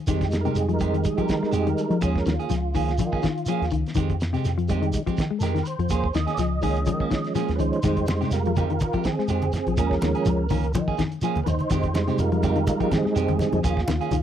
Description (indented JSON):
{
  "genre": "afrobeat",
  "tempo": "124 BPM",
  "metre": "4/4",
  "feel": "swing 54% on 16ths",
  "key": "F minor",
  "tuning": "A4 = 440 Hz",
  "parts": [
    { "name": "mellow electric guitar", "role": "arpeggios", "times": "0.0-14.2 s", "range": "C3 to Ab3", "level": "-28 LUFS", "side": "left 8 dB", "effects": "none" },
    { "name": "mellow tonewheel organ", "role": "accompaniment", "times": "0.1-14.2 s", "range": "F3 to Eb5", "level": "-26 LUFS", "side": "right 3 dB", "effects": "slow rotary speaker, chorus vibrato" },
    { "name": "clean electric guitar", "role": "stabs", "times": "0.1-14.2 s", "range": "Eb3 to Ab4", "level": "-31 LUFS", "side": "right 10 dB", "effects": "none" },
    { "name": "fingered electric bass with an envelope filter", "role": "bass", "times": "0.1-14.2 s", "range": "Bb1 to F3", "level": "-27 LUFS", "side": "equal", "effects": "none" },
    { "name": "cloth-damped thuddy drum kit", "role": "drums", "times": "0.1-14.2 s", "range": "hi-hat, kick drum, snare drum", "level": "-29 LUFS", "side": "equal", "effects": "none" },
    { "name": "shekere", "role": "percussion", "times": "0.1-14.2 s", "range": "none", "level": "-32 LUFS", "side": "right 1 dB", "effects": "none" },
    { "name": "congas", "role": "percussion", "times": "8.1-14.2 s", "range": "none", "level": "-30 LUFS", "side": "right 2 dB", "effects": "none" }
  ],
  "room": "studio reverb",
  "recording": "dry, close 1970s-style studio recording",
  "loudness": "-21 LUFS",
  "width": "side -10 dB against mid",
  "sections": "0.0-14.2 A section",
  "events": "tonewheel organ solo 0.0-14.2",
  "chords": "0.1 Fm9; 2.0 Eb9sus4; 4.0 Fm9; 5.9 Eb9sus4; 7.8 Fm9; 9.8 Eb9sus4; 11.7 Fm9; 13.6 Eb9sus4"
}